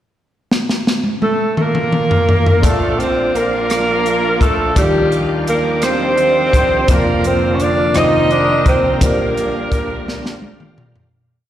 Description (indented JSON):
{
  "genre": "slow gospel",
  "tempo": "56 BPM (dotted quarters)",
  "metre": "6/8",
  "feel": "straight",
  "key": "Bb major",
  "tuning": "A4 = 440 Hz",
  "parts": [
    { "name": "crisp fusion drum kit", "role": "drums", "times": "0.5-11.1 s", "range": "hi-hat, kick drum, rim click, snare drum, toms", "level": "-16 LUFS", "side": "equal", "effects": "none" },
    { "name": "breathy tenor saxophone", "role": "melody", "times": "1.2-10.4 s", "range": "G3 to Eb4", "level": "-17 LUFS", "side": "right 2 dB", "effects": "slapback echo" },
    { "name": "warm saxophone section", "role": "melody", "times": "1.2-10.4 s", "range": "Bb3 to Eb5", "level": "-19 LUFS", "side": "left 2 dB", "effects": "slapback echo" },
    { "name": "clear grand piano", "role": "accompaniment", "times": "2.6-11.2 s", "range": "F1 to A5", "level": "-21 LUFS", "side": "left 1 dB", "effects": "none" },
    { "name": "bright tonewheel organ", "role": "sustained chords", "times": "2.6-11.1 s", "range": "F2 to F4", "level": "-23 LUFS", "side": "right 2 dB", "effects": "slow rotary speaker, overdrive, chorus vibrato" },
    { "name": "warm studio string section", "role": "sustained chords", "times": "2.6-11.1 s", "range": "F2 to D4", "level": "-27 LUFS", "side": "left 1 dB", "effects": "none" }
  ],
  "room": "moderate lush hall reverb, RT60 2.8 s",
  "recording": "live gig heard through the venue's PA, recital hall reverb",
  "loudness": "-13 LUFS",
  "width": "side -11 dB against mid",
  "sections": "0.5-2.6 pickup bar; 2.6-11.1 A section",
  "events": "drum fill 0.5-2.6, 10.1-11.1; fade-out 9.0-11.1",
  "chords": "0.5 Bb; 2.6 Bbmaj7; 4.8 Ebmaj9; 6.9 Bb/F; 7.9 F7sus4; 9.0 Bb6"
}